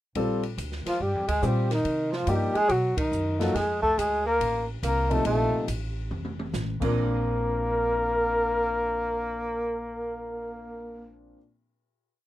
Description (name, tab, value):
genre	jazz, small-group swing and bop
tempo	141 BPM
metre	4/4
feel	swing 66% on 8ths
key	Bb major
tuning	A4 = 440 Hz
part	warm concert grand piano	accompaniment	0.2-11.4 s	Bb2 to C5	-31 LUFS	left 2 dB	none
part	upright bass	bass	0.2-11.3 s	F1 to C3	-31 LUFS	right 1 dB	none
part	open jazz drum kit	drums	0.2-6.9 s	crash cymbal, hi-hat, kick drum, ride cymbal, snare drum, toms	-36 LUFS	equal	none
part	breathy flugelhorn	melody	0.9-11.1 s	D#4 to Bb4	-27 LUFS	left 2 dB	none
part	mellow tenor saxophone	second line	0.9-11.1 s	Eb3 to Bb3	-30 LUFS	right 2 dB	none
room	light reverb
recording	rough home demo mix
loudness	-24 LUFS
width	side -14 dB against mid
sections	0.1-7.0 A section; 7.0-10.4 final hit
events	band accent 2.9; drum fill 6.1-6.5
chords	0.1 Bbmaj7; 1.0 Gm7; 1.8 Cm7; 2.7 B7; 3.5 Bbmaj7; 6.7 Bb